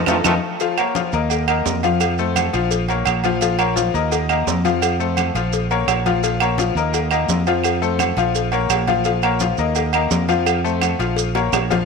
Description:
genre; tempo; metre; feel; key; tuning
latin, salsa; 170 BPM; 4/4; straight; Bb harmonic minor; A4 = 440 Hz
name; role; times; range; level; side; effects
fingered electric bass; bass; 0.0-11.8 s; Bb1 to F2; -22 LUFS; right 2 dB; none
bright concert grand piano; accompaniment; 0.1-11.8 s; F3 to F5; -20 LUFS; left 9 dB; none
bongos and cowbell; percussion; 0.1-11.8 s; none; -29 LUFS; left 10 dB; none
claves; percussion; 0.1-11.7 s; none; -27 LUFS; right 14 dB; none
congas; percussion; 0.1-11.8 s; none; -28 LUFS; left 8 dB; none
maracas; percussion; 0.1-11.8 s; none; -30 LUFS; right 16 dB; none
timbales and agogo bells; percussion; 0.1-11.8 s; none; -23 LUFS; right 16 dB; none
room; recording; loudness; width
moderate plate reverb, RT60 2.9 s; 1960s-style stereo with parts hard left and right; -16 LUFS; side -4 dB against mid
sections
0.6-11.8 A section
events
drum fill 0.0-0.6, 11.4-11.8; band accent 0.0-0.6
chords
0.0 F7; 0.6 Bbm; 1.3 Eb5; 2.0 F; 2.7 Bbm; 4.1 Eb5; 4.8 F; 5.5 Bbm; 6.9 Eb5; 7.6 F; 8.3 Bbm; 9.8 Eb5; 10.5 F; 11.2 Bbm

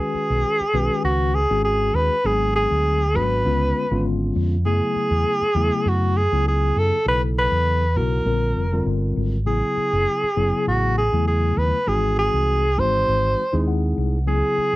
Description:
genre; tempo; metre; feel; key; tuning
electric jazz fusion; 100 BPM; 4/4; swing 53% on 16ths; unclear; A4 = 440 Hz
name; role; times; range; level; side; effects
breathy alto saxophone; melody; 0.0-14.8 s; F#4 to B#4; -21 LUFS; equal; slapback echo
mellow tine electric piano; accompaniment; 0.0-14.8 s; C#3 to F#5; -26 LUFS; left 3 dB; medium stereo tremolo
fingered electric bass; bass; 0.1-14.8 s; E#1 to F#2; -22 LUFS; equal; none
room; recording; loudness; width
little or no reverb; dry, close 1970s-style studio recording; -18 LUFS; side -18 dB against mid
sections
0.0-14.8 A section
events
tine electric piano fill 13.4-14.3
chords
0.0 C#sus2; 2.3 G#m7b5; 3.5 C#7b9; 4.7 F#m9; 7.1 B5; 8.3 A#9; 9.5 A69; 11.9 G#7b13

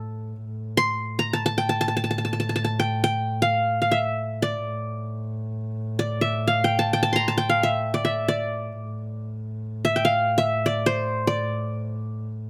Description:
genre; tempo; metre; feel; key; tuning
Arabic maqam ensemble; free time; none; none; A minor; A4 = 439 Hz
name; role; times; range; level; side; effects
qanun; melody; 0.0-12.3 s; A4 to C6; -25 LUFS; equal; none
dark double bass; drone; 0.0-12.5 s; A2; -32 LUFS; equal; none
room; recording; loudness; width
little or no reverb; close, detailed microphones; -25 LUFS; mono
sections
0.5-12.5 A section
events
none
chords
none

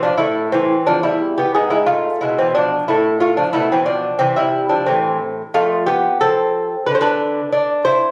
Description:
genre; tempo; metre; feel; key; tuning
classical, baroque-style dance for lute; 90 BPM; 4/4; rubato; unclear; A4 = 440 Hz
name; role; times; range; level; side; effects
lute; solo; 0.0-8.1 s; E2 to C5; -17 LUFS; equal; none
room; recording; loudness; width
light reverb; recorded on a phone in the room, studio reverb, compression; -17 LUFS; mono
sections
0.0-8.1 A section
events
none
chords
0.2 A5; 1.5 E/G#; 2.9 Am; 5.5 F; 6.9 Cmaj9/D

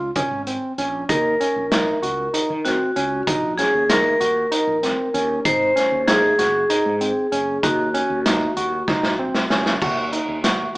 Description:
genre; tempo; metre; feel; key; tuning
progressive instrumental, band music in an uneven meter; 193 BPM (eighths); 7/8; straight; Eb dorian; A4 = 440 Hz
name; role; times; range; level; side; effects
barky tine electric piano; arpeggios; 0.0-10.8 s; C4 to Gb4; -23 LUFS; right 1 dB; overdrive
mellow fretless electric bass; bass; 0.0-10.7 s; Gb1 to Eb3; -32 LUFS; equal; none
vintage drum kit; drums; 0.2-10.8 s; crash cymbal, hi-hat, kick drum, snare drum; -23 LUFS; equal; none
vibraphone with hard mallets; second line; 1.1-9.5 s; Gb4 to C5; -20 LUFS; equal; none
room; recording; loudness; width
moderate large studio reverb, RT60 0.9 s; band playing live in one room, small speaker sound; -17 LUFS; side -22 dB against mid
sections
0.0-9.8 A section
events
drum fill 8.9-9.8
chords
0.0 Db5; 1.1 Ebm7; 5.5 Ab7; 7.6 Ebm7; 9.8 Ebm

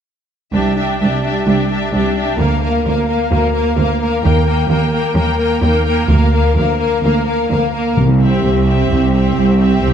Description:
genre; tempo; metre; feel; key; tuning
cinematic; 129 BPM; 4/4; straight; unclear; A4 = 441 Hz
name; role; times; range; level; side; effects
rich studio violin section; melody; 0.5-9.9 s; E5 to G5; -24 LUFS; left 6 dB; none
warm symphonic violin section; second line; 0.5-9.9 s; G4 to Bb4; -20 LUFS; left 3 dB; none
bright symphonic viola section; accompaniment; 0.5-9.9 s; Bb3 to D4; -20 LUFS; right 1 dB; none
rich symphonic cello section; bass; 0.5-9.9 s; C2 to Eb2; -16 LUFS; right 2 dB; none
rich symphonic double bass section; bass; 0.5-9.9 s; C2 to Eb2; -16 LUFS; right 2 dB; none
timpani; percussion; 8.0-8.6 s; C3; -20 LUFS; left 4 dB; none
room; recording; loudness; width
moderate concert hall reverb, RT60 1.9 s; dark, warm production; -12 LUFS; side -8 dB against mid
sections
0.5-8.0 A section; 8.0-9.9 B section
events
build-up 8.0-9.9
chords
0.5 Cadd9; 2.4 Bb/D; 4.2 Eb; 6.1 Bb/D; 8.0 C

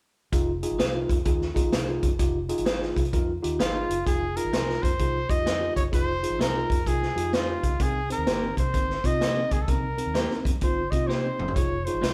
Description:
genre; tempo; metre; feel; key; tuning
uptempo 1960s-style soul; 128 BPM; 4/4; swing 64% on 8ths; F minor; A4 = 440 Hz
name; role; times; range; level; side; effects
tine electric piano; accompaniment; 0.3-12.0 s; C4 to C5; -32 LUFS; equal; none
vintage muted fingered electric bass; bass; 0.3-12.1 s; F1 to C3; -35 LUFS; equal; none
vintage drum kit; drums; 0.3-12.1 s; hi-hat, kick drum, snare drum, toms; -29 LUFS; equal; none
clean electric guitar; stabs; 0.8-12.1 s; Ab3 to F5; -36 LUFS; equal; none
bright trumpet; melody; 3.6-12.1 s; F4 to Eb5; -32 LUFS; equal; none
room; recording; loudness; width
moderate stone room reverb, RT60 1.1 s; band playing live in one room; -26 LUFS; mono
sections
0.3-4.1 A section; 4.1-12.1 B section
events
drum fill 11.1-11.6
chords
0.3 Fm7; 7.8 Cm7; 11.6 Fm7

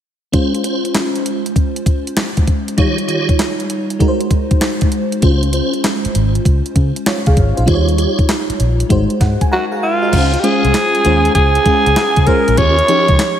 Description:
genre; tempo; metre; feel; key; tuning
R&B, new jack swing; 98 BPM; 4/4; swing 66% on 16ths; Db major; A4 = 440 Hz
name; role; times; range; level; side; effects
FM electric piano with soft pad layer; accompaniment; 0.3-13.4 s; F3 to Bb5; -18 LUFS; equal; chorus, slapback echo
tonewheel organ; stabs; 0.3-13.1 s; Eb3 to Db5; -22 LUFS; right 1 dB; overdrive, chorus vibrato, fast rotary speaker, tape echo, slapback echo
clean 12-bit digital drum machine; drums; 0.3-13.4 s; crash cymbal, handclaps, hi-hat, kick drum, snare drum; -16 LUFS; equal; none
vintage muted fingered electric bass; bass; 5.2-13.2 s; Ab1 to Db3; -15 LUFS; equal; none
growling alto saxophone; melody; 9.5-13.4 s; F4 to Db5; -13 LUFS; right 1 dB; none
room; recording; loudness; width
moderate lush hall reverb, RT60 2.6 s; big arena sound; -12 LUFS; side -10 dB against mid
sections
0.3-10.1 A section; 10.1-13.4 B section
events
FM electric piano fill 8.9-10.1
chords
0.3 Dbmaj7; 2.8 Eb9; 4.0 Ab7; 5.2 Dbmaj7; 7.7 Eb9; 8.9 Ab7; 10.1 Dbmaj7; 12.6 Eb9

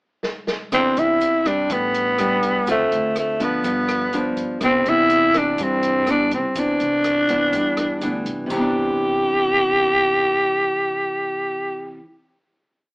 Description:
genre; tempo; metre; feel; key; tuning
bossa nova; 123 BPM; 4/4; straight; C major; A4 = 440 Hz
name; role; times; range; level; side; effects
open jazz drum kit; drums; 0.2-8.6 s; hi-hat, kick drum, rim click, snare drum, splash cymbal; -30 LUFS; equal; none
growling tenor saxophone; melody; 0.7-12.0 s; A3 to G4; -18 LUFS; equal; none
nylon-string guitar; accompaniment; 0.7-12.1 s; G2 to F4; -25 LUFS; equal; none
upright bass; bass; 0.7-12.0 s; G1 to G2; -35 LUFS; equal; none
egg shaker; percussion; 0.7-8.6 s; none; -52 LUFS; right 2 dB; none
room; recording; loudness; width
light reverb; AM radio sound; -17 LUFS; side -30 dB against mid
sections
0.0-0.7 pickup bar; 0.7-8.5 A section; 8.5-12.4 final chord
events
drum fill 0.2-0.7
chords
0.0 N.C.; 0.7 Cmaj9; 1.7 A9sus4; 2.7 Dm7; 3.6 G7; 4.6 Cmaj9

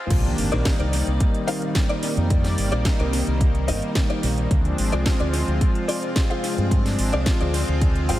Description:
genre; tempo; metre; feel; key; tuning
nu-disco, nu disco; 109 BPM; 4/4; straight; C minor; A4 = 441 Hz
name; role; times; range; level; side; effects
warm analog pad; accompaniment; 0.0-8.2 s; Eb3 to D5; -26 LUFS; equal; chorus, tape echo
string machine, full ensemble; sustained chords; 0.1-8.2 s; Bb3 to D5; -32 LUFS; right 1 dB; ensemble chorus, sidechain pumping
fingered electric bass with an envelope filter; bass; 0.1-8.2 s; G1 to G2; -23 LUFS; equal; none
electronic kick drum; drums; 0.1-7.9 s; none; -21 LUFS; equal; high-pass filter on kick, high-pass filter on room
house drum kit; drums; 0.1-8.2 s; crash cymbal, hi-hat, snare drum; -30 LUFS; equal; tape echo
impact; sound effects; 0.2-2.3 s; none; -32 LUFS; equal; none
direct-recorded clean electric guitar; riff; 0.5-8.2 s; Eb4 to G5; -29 LUFS; left 2 dB; ensemble chorus, tape echo
room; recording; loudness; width
light reverb, digital ambience; echo-heavy mix, high-pass filter; -19 LUFS; side -14 dB against mid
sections
0.1-8.2 A section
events
drop 0.1-8.2; impact 0.1-2.3; clean electric guitar fill 7.8-8.2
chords
0.1 Cm9; 4.5 Dm7b5

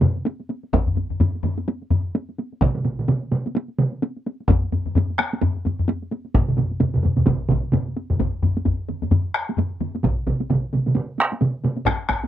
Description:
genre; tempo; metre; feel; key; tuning
japanese traditional, taiko drum ensemble; 129 BPM; 4/4; swing 60% on 16ths; none; none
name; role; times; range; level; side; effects
taiko ensemble; percussion; 0.0-12.3 s; none; -26 LUFS; right 2 dB; none
taiko ensemble; percussion; 0.0-12.2 s; none; -22 LUFS; left 2 dB; none
taiko ensemble; percussion; 0.0-11.8 s; none; -21 LUFS; right 2 dB; none
taiko ensemble; percussion; 0.7-12.2 s; none; -23 LUFS; equal; none
room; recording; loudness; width
little or no reverb; close, detailed microphones; -20 LUFS; side -12 dB against mid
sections
0.0-8.2 A section; 8.2-12.3 B section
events
speeding up 0.0-12.3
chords
none

